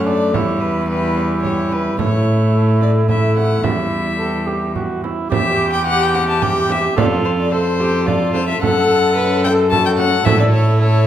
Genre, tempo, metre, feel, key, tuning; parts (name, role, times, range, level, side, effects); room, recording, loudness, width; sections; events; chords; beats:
classical, renaissance-style consort dance; 109 BPM; 3/4; straight; E dorian; A4 = 440 Hz
rich violin; melody; 0.0-11.1 s; B4 to A5; -21 LUFS; left 5 dB
mellow cor anglais; second line; 0.0-11.1 s; D4 to A4; -22 LUFS; right 4 dB
lute; accompaniment; 0.0-11.1 s; E2 to A4; -27 LUFS; left 6 dB
warm viola; accompaniment; 0.0-11.1 s; G3 to B4; -21 LUFS; left 2 dB
rich cello; bass; 0.0-11.1 s; E2 to A2; -19 LUFS; right 1 dB
frame drum; percussion; 0.1-10.5 s; -23 LUFS; right 5 dB
wet recital hall reverb, RT60 1.4 s; -14 LUFS; side -11 dB against mid
0.0-5.3 A section; 5.3-11.1 A section
0.3 Em; 2.0 A; 3.6 Em; 7.0 F; 8.6 F#m; 10.3 A
| 0.34 0.89 1.44 | 1.98 2.53 3.08 | 3.64 4.20 4.76 | 5.31 5.87 6.42 | 6.97 7.52 8.07 | 8.62 9.17 9.72 | 10.26 10.81